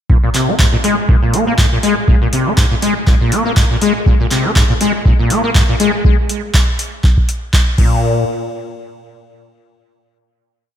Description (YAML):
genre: acid house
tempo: 121 BPM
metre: 4/4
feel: swing 55% on 16ths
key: unclear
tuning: A4 = 438 Hz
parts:
  - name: acid bass, saw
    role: riff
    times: 0.1-8.2 s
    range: Ab2 to Bb3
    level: -15 LUFS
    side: left 1 dB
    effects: overdrive, ensemble chorus, sidechain pumping, ping-pong delay
  - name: electronic kick drum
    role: drums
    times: 0.1-7.9 s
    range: none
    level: -13 LUFS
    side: equal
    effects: none
  - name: booming analog drum machine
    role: drums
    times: 0.3-7.9 s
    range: crash cymbal, handclaps, hi-hat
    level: -20 LUFS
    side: equal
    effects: none
room: moderate lush hall reverb, RT60 2.1 s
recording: dreamy mix soaked in reverb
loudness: -11 LUFS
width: side -10 dB against mid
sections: 0.1-8.0 groove; 8.0-10.8 final hit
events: none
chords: none